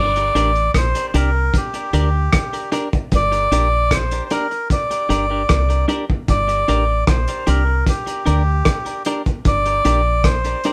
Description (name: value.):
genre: roots reggae.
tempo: 76 BPM.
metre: 4/4.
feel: straight.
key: G minor.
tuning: A4 = 440 Hz.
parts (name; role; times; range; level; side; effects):
melodica; melody; 0.0-10.7 s; G4 to D5; -22 LUFS; equal; none.
deep dub fingered electric bass; bass; 0.0-10.5 s; G1 to D2; -21 LUFS; equal; none.
cloth-damped thuddy drum kit; drums; 0.2-10.7 s; hi-hat, kick drum, rim click; -22 LUFS; equal; none.
clean electric guitar; accompaniment; 0.4-10.7 s; D4 to D5; -27 LUFS; equal; tape echo.
room: moderate studio reverb, RT60 0.6 s.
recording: band playing live in one room.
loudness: -18 LUFS.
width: mono.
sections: 0.0-10.7 A section.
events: none.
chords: 0.0 Gm.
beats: 0.75 1.54 2.33 | 3.12 3.91 4.71 5.50 | 6.29 7.08 7.87 8.66 | 9.46 10.25.